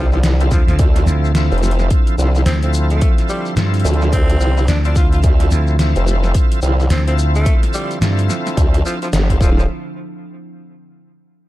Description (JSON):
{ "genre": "glitch hop", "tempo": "108 BPM", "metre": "4/4", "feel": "swing 60% on 16ths", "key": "D minor", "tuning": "A4 = 440 Hz", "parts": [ { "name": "growling tenor saxophone", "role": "melody", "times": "0.0-9.6 s", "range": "F3 to F4", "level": "-26 LUFS", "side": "equal", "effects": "tape echo" }, { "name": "warbly tape-like pad", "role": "sustained chords", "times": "0.0-9.7 s", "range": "D3 to E5", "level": "-28 LUFS", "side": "right 4 dB", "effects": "chorus, built-in reverb, sidechain pumping" }, { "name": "bright tonewheel organ", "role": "stabs", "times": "0.0-9.6 s", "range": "C4 to A4", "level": "-24 LUFS", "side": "equal", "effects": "overdrive, chorus vibrato, slow rotary speaker, sidechain pumping, tape echo" }, { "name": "formant-sweep wobble bass", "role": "bass", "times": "0.0-9.7 s", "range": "D1 to D2", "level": "-15 LUFS", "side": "equal", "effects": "chorus" }, { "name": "shekere", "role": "percussion", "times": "0.1-9.7 s", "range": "none", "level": "-33 LUFS", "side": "left 5 dB", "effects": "none" }, { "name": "dubstep drum kit", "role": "drums", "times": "0.2-9.4 s", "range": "hi-hat, snare drum", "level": "-22 LUFS", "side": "equal", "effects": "overdrive" }, { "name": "vintage slap bass", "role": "bass", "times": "0.5-8.3 s", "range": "D2 to G2", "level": "-15 LUFS", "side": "equal", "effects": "none" }, { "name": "electronic kick drum", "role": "drums", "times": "0.5-9.5 s", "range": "none", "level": "-14 LUFS", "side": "equal", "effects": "overdrive" } ], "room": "digital ambience", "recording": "dark, warm production", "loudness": "-13 LUFS", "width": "side -16 dB against mid", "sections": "0.0-9.7 A section; 9.7-11.5 B section", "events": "drop 0.0-9.7; band accent 9.1", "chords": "0.0 Dm9; 9.7 N.C." }